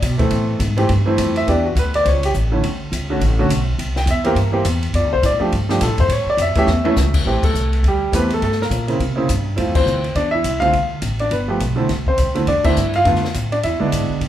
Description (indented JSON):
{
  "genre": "jazz piano trio",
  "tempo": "207 BPM",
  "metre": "4/4",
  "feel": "swing 60% on 8ths",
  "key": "A minor from 7.3 s",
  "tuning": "A4 = 440 Hz",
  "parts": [
    { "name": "warm concert grand piano", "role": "melody", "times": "0.0-14.2 s", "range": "C#3 to G5", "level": "-18 LUFS", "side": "equal", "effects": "none" },
    { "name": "upright bass", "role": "bass", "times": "0.0-14.3 s", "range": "G1 to C3", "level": "-20 LUFS", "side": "equal", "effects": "none" },
    { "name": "compact cocktail drum kit", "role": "drums", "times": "0.0-14.3 s", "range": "crash cymbal, hi-hat, kick drum, ride cymbal, snare drum, toms", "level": "-25 LUFS", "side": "left 2 dB", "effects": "none" }
  ],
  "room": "moderate large studio reverb, RT60 1.3 s",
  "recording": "band playing live in one room",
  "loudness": "-15 LUFS",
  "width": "side -12 dB against mid",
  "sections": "0.0-7.3 A section; 7.3-14.3 B section",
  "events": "grand piano solo 0.0-7.3; drum fill 6.7; band accent 7.4, 9.7, 12.6",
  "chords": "0.3 Am7; 1.5 Em7; 2.1 A; 2.6 Dmaj7(no3); 3.8 C7; 4.9 F69; 6.1 A; 7.3 Am7; 8.4 Gmadd9; 9.0 C7(no3); 9.6 Fmaj7; 10.7 Dm; 11.3 Gadd9; 11.9 Cadd9; 13.1 Bm7b5; 13.6 E7"
}